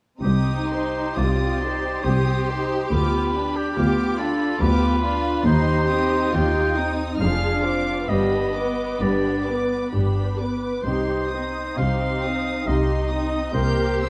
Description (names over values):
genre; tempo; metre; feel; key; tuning
classical; 62-73 BPM; 3/4; rubato; C minor; A4 = 440 Hz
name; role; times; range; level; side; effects
clear studio violin section; melody; 0.2-14.1 s; B5 to G6; -39 LUFS; equal; none
clear oboe; second line; 0.2-14.1 s; G4 to G5; -29 LUFS; equal; none
rich studio violin section; second line; 0.2-14.1 s; B3 to G4; -31 LUFS; equal; none
rich studio viola section; accompaniment; 0.2-14.1 s; Bb3 to C5; -27 LUFS; equal; none
warm studio cello section; bass; 0.2-14.1 s; C2 to C3; -28 LUFS; equal; none
warm studio double bass section; bass; 0.2-14.1 s; F1 to Eb2; -29 LUFS; equal; none
room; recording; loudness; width
moderate scoring stage reverb, RT60 1.9 s; dark, warm production; -22 LUFS; mono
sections
0.2-14.1 A section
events
none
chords
0.2 Cm; 2.9 Bdim/D; 5.5 Cm/Eb; 7.2 Ddim/F; 8.1 G; 10.8 Cm; 13.5 C7(no3)